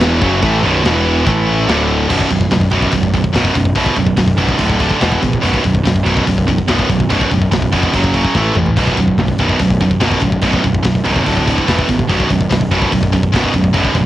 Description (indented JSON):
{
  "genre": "heavy metal",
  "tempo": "144 BPM",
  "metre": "4/4",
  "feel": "straight",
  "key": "B minor",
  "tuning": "A4 = 439 Hz",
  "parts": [
    { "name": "heavy high-gain guitar", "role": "riff", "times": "0.0-14.1 s", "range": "B1 to A3", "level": "-19 LUFS", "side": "left 6 dB", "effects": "distortion" },
    { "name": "heavy high-gain guitar", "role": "riff", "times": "0.0-14.1 s", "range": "B1 to A3", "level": "-16 LUFS", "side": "right 4 dB", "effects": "distortion" },
    { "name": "fuzz picked electric bass", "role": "bass", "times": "0.0-14.1 s", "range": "B0 to A#1", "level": "-18 LUFS", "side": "left 1 dB", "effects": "overdrive" },
    { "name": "tight metal drum kit", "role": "drums", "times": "0.0-14.0 s", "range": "crash cymbal, hi-hat, kick drum, snare drum, toms", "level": "-18 LUFS", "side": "left 1 dB", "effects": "cassette tape" }
  ],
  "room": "little or no reverb",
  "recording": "home recording on cassette",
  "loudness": "-12 LUFS",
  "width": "side -14 dB against mid",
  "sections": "0.0-2.1 A section; 2.1-14.1 B section",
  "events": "drum fill 8.3-8.8",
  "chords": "0.2 B5; 0.8 E5; 1.3 A5; 1.7 D5; 2.1 B5; 4.6 D5; 5.0 E5; 5.4 B5; 7.9 F#5; 8.3 A5; 8.8 B5; 11.3 D5; 11.7 E5; 12.1 B5"
}